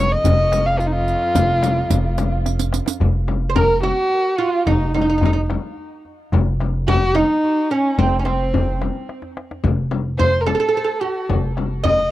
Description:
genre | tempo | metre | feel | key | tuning
Persian modal ensemble | 109 BPM | 3/4 | straight | F dastgah homayun | A4 = 439 Hz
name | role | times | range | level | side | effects
dark kamancheh | melody | 0.0-12.1 s | C4 to F5 | -20 LUFS | equal | tape echo
upright bass | bass | 0.0-12.1 s | F1 | -21 LUFS | equal | none
dark cello | drone | 0.0-3.1 s | F2 | -29 LUFS | right 1 dB | stereo widening
riq | percussion | 0.2-3.0 s | none | -26 LUFS | right 12 dB | none
tombak | percussion | 0.2-12.0 s | none | -22 LUFS | equal | none
frame drum | percussion | 0.3-12.0 s | none | -24 LUFS | left 6 dB | none
oud | second line | 3.5-12.1 s | C4 to Eb5 | -22 LUFS | right 5 dB | none
room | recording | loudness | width
light reverb | dry, close 1970s-style studio recording | -16 LUFS | side -15 dB against mid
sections
0.0-3.0 A section; 3.0-12.1 B section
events
drum fill 2.5-3.0, 9.1-9.6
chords
none

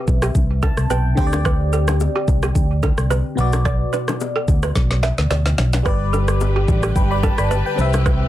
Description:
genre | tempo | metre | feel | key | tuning
afrobeats | 109 BPM | 4/4 | swing 55% on 16ths | G major | A4 = 440 Hz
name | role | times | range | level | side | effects
barking FM electric piano | accompaniment | 0.0-8.3 s | B2 to B5 | -24 LUFS | left 1 dB | chorus, phaser
balafon | riff | 0.0-8.1 s | G4 to E5 | -26 LUFS | right 4 dB | digital delay
fingered electric bass | bass | 0.1-8.2 s | G1 to D2 | -19 LUFS | equal | none
afro-pop drum kit | drums | 0.1-8.2 s | kick drum, rim click, shaker, snare drum | -20 LUFS | equal | vintage 12-bit sampler grit
bongos and congas | percussion | 0.1-8.2 s | none | -29 LUFS | left 4 dB | none
warm studio string section | sustained chords | 5.9-8.3 s | D3 to B4 | -28 LUFS | left 2 dB | none
room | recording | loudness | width
little or no reverb | dense, heavily limited modern master | -16 LUFS | side -14 dB against mid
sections
0.0-5.9 A section; 5.9-8.3 B section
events
FM electric piano fill 0.4-1.5; drum fill 4.8-5.9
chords
0.0 Cmaj7; 1.2 D7sus4; 3.4 Bm; 5.9 G

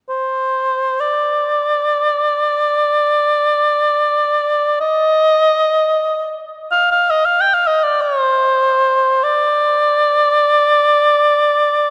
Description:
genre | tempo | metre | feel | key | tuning
caucasian folk, Caucasian lament | free time | none | none | unclear | A4 = 442 Hz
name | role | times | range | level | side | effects
warm cor anglais | solo | 0.1-11.9 s | C5 to G5 | -15 LUFS | equal | none
room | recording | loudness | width
moderate cathedral reverb, RT60 5.8 s | dark, warm production | -15 LUFS | mono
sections
0.0-11.9 A section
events
none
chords
none

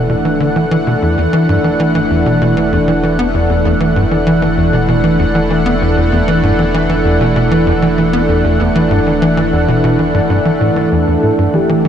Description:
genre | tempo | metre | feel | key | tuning
ambient | 97 BPM | 4/4 | straight | unclear | A4 = 440 Hz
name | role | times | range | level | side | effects
lush unison pad | sustained chords | 0.0-11.9 s | E3 to F#5 | -13 LUFS | equal | chorus
tight sequencer bass | riff | 0.0-11.9 s | E2 to B3 | -14 LUFS | equal | wide subtle chorus, tape echo
warm sub bass | bass | 0.0-11.9 s | E1 | -23 LUFS | equal | tube saturation
breathy flute-like synth lead | melody | 10.9-11.9 s | G4 to A4 | -18 LUFS | equal | ensemble chorus, tape echo
room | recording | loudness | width
wet huge ambient reverb, RT60 8.6 s | dreamy mix soaked in reverb | -10 LUFS | side -9 dB against mid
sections
0.0-11.9 A section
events
none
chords
0.0 E7(no3)

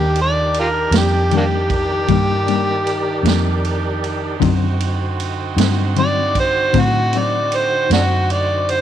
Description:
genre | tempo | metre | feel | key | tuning
slow blues | 52 BPM (dotted quarters) | 12/8 | straight | unclear | A4 = 441 Hz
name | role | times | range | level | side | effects
overdriven harmonica | melody | 0.0-8.8 s | Bb3 to D5 | -18 LUFS | equal | none
bright horn section | sustained chords | 0.0-8.8 s | C4 to G4 | -28 LUFS | right 10 dB | none
tonewheel organ | sustained chords | 0.0-8.8 s | D3 to D5 | -26 LUFS | right 1 dB | slow rotary speaker, chorus vibrato
vintage muted fingered electric bass | bass | 0.0-8.8 s | Eb2 to A2 | -20 LUFS | right 1 dB | none
vintage drum kit | drums | 0.2-8.8 s | kick drum, ride cymbal, snare drum | -25 LUFS | right 5 dB | none
mellow electric guitar | accompaniment | 0.9-8.1 s | D3 to Eb4 | -21 LUFS | left 10 dB | tremolo
room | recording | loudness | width
light reverb | 1960s-style stereo with parts hard left and right | -15 LUFS | side -10 dB against mid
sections
0.0-8.8 A section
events
harmonica solo 0.0-8.8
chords
0.0 Ebmaj7; 4.4 D7b9

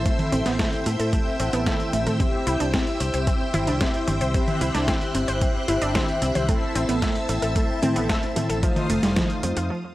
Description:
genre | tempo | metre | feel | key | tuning
italo disco | 112 BPM | 4/4 | straight | A minor | A4 = 441 Hz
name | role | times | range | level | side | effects
string machine, full ensemble | sustained chords | 0.0-9.7 s | C5 to F#6 | -31 LUFS | equal | ensemble chorus
mellow synth brass | stabs | 0.0-9.7 s | A3 to F#5 | -28 LUFS | left 2 dB | chorus, analog delay
fingered electric bass with an envelope filter | bass | 0.0-9.7 s | F1 to A2 | -28 LUFS | equal | tube saturation
analog pluck | arpeggios | 0.1-9.8 s | F3 to C5 | -27 LUFS | right 1 dB | chorus, analog delay
dusty soul sampler-style drum kit | drums | 0.1-9.7 s | hi-hat, snare drum, toms | -28 LUFS | equal | overdrive
electronic kick drum | drums | 0.1-9.3 s | none | -25 LUFS | equal | overdrive
room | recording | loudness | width
digital ambience | dry, gritty hardware recording, vinyl crackle | -20 LUFS | side -16 dB against mid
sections
0.0-9.9 A section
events
break 9.7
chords
0.0 Am; 2.2 C; 6.5 Am; 8.6 F7

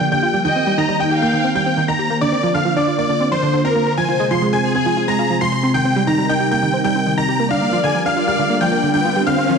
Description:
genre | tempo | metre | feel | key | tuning
trance | 136 BPM | 4/4 | straight | unclear | A4 = 440 Hz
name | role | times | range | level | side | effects
big supersaw lead | melody | 0.0-9.5 s | Bb4 to C6 | -19 LUFS | equal | low-pass filter, digital delay
clear grand piano | second line | 0.0-9.6 s | Bb5 to C7 | -28 LUFS | left 4 dB | low-pass filter, digital delay
lush unison pad | sustained chords | 0.0-9.6 s | C3 to D5 | -21 LUFS | left 1 dB | chorus
analog pluck | arpeggios | 0.0-9.6 s | D3 to C5 | -20 LUFS | right 3 dB | analog chorus, digital delay
warm chamber violin section | second line | 0.4-8.7 s | Ab4 to F5 | -25 LUFS | left 2 dB | digital delay
riser | sound effects | 8.2-9.6 s | none | -23 LUFS | left 4 dB | none
room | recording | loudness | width
moderate lush hall reverb, RT60 2.3 s | dark, warm production | -15 LUFS | side -6 dB against mid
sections
0.0-9.6 A section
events
filter sweep on analog synth pad 0.0-9.6; riser 8.2-9.6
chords
0.4 Cm7; 2.2 Bbadd9; 4.0 Fm; 5.7 Cm7; 7.5 Gm7

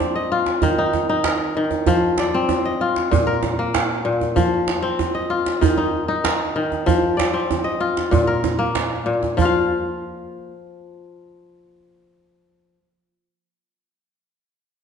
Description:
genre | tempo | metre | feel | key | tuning
west african traditional, West African string and xylophone music | 96 BPM | 4/4 | straight | unclear | A4 = 440 Hz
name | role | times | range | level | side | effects
kora | arpeggios | 0.0-12.8 s | Bb2 to F5 | -20 LUFS | left 3 dB | slapback echo
djembe | percussion | 0.0-9.7 s | none | -22 LUFS | right 6 dB | none
room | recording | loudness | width
wet recital hall reverb, RT60 1.6 s | nothing above 10.9 kHz | -18 LUFS | side -7 dB against mid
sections
0.0-9.4 A section; 9.4-11.9 B section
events
none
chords
0.0 F5; 0.6 Eb5; 1.9 F5; 3.1 Bb5; 4.4 F5; 5.6 Eb5; 6.9 F5; 8.1 N.C.

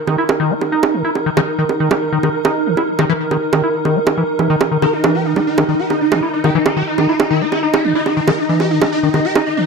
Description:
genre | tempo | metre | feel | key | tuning
psychedelic trance | 139 BPM | 4/4 | straight | unclear | A4 = 440 Hz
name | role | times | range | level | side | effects
swarming drone | sustained chords | 0.0-9.7 s | Eb4 to Eb5 | -20 LUFS | equal | built-in reverb
liquid acid bass | riff | 0.1-9.7 s | Eb3 to Fb4 | -18 LUFS | moving between left 5 dB and right 3 dB | chorus, auto-pan, digital delay
bongos | drums | 0.1-9.4 s | none | -19 LUFS | right 6 dB | overdrive
swarming rave lead | melody | 4.8-9.6 s | Eb4 to Bb4 | -18 LUFS | equal | chorus, phaser, digital delay
room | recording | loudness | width
moderate digital room reverb, RT60 1.0 s | none | -13 LUFS | side -4 dB against mid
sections
0.0-9.7 A section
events
none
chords
0.0 Eb5

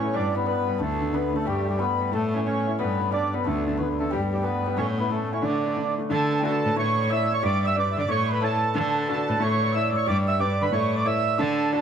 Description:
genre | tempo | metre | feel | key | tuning
celtic folk, Celtic hornpipe | 181 BPM | 4/4 | swing 65% on 8ths | unclear | A4 = 440 Hz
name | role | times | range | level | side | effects
mellow accordion | melody | 0.0-11.8 s | G3 to E5 | -26 LUFS | right 2 dB | tape echo
cimbalom | second line | 0.0-11.8 s | G3 to E5 | -31 LUFS | right 6 dB | none
mellow hollow wooden flute | second line | 0.0-11.8 s | C#5 to E6 | -33 LUFS | left 3 dB | none
clear upright piano | accompaniment | 0.0-11.8 s | D3 to C#5 | -30 LUFS | left 3 dB | none
rich cello | bass | 0.1-11.8 s | D2 to D3 | -27 LUFS | equal | none
room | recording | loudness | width
moderate studio reverb, RT60 0.5 s | none | -22 LUFS | side -8 dB against mid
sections
0.0-6.1 A section; 6.1-11.8 B section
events
none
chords
0.1 G; 0.8 D5; 1.5 G; 2.1 A; 2.8 G; 3.5 D5; 4.1 G; 4.8 A5; 5.4 D5; 6.1 D; 6.8 A; 7.4 G; 8.1 A; 8.7 D; 9.4 A; 10.1 G; 10.7 A

